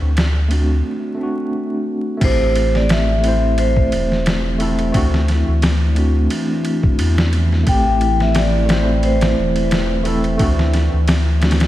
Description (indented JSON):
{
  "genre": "trip hop",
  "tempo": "88 BPM",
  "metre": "4/4",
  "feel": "swing 55% on 16ths",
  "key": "A dorian",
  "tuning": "A4 = 440 Hz",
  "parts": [
    { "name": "warm sub bass", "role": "bass", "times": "0.0-11.7 s", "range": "E1 to E2", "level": "-17 LUFS", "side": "equal", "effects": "none" },
    { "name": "trip hop sampler-style drum kit", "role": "drums", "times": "0.2-11.7 s", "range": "crash cymbal, kick drum, ride cymbal, snare drum", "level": "-20 LUFS", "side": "equal", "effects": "overdrive, studio ambience" },
    { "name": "tine electric piano", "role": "accompaniment", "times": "0.5-11.7 s", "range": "A3 to C5", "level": "-21 LUFS", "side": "equal", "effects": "medium tremolo, tape echo" },
    { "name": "vibraphone with medium mallets", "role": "melody", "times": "2.2-10.0 s", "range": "C5 to G5", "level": "-22 LUFS", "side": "left 1 dB", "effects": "tape echo" },
    { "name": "dark analog pad", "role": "sustained chords", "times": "2.6-11.7 s", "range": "E3 to E4", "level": "-25 LUFS", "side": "equal", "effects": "chorus" }
  ],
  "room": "moderate lush hall reverb, RT60 2.1 s",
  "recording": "dreamy mix soaked in reverb, vinyl crackle",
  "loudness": "-14 LUFS",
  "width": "side -14 dB against mid",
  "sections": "0.0-2.2 A section; 2.2-11.7 B section",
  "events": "break 0.8-2.2",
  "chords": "0.0 D7; 2.2 Am7; 4.9 D7; 7.7 Am7; 10.4 D7",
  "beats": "0.17 0.85 1.53 | 2.21 2.90 3.58 4.26 | 4.94 5.62 6.30 6.99 | 7.67 8.35 9.03 9.71 | 10.39 11.08"
}